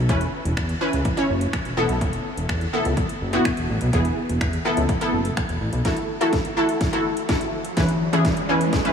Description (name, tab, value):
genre	dance-pop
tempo	125 BPM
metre	4/4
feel	straight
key	unclear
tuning	A4 = 440 Hz
part	fat analog bass	bass	0.0-5.8 s	E1 to E2	-23 LUFS	equal	sidechain pumping
part	wide unison pluck	accompaniment	0.1-8.9 s	E3 to C#5	-22 LUFS	equal	lush chorus, sidechain pumping
part	house drum kit	drums	0.1-8.9 s	finger snaps, hi-hat, kick drum, snare drum	-26 LUFS	equal	overdrive
part	riser	sound effects	7.1-8.9 s	none	-30 LUFS	right 1 dB	none
room	moderate huge ambient reverb, RT60 6.9 s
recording	dreamy mix soaked in reverb, small room ambience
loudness	-20 LUFS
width	side -7 dB against mid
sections	0.0-5.9 A section; 5.9-8.9 B section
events	build-up 5.9-8.9; drum fill 5.9-8.9; riser 7.1-8.9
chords	0.1 C#m7/E; 1.8 B7sus4/E; 5.9 F#m7/E; 7.8 C#m7/E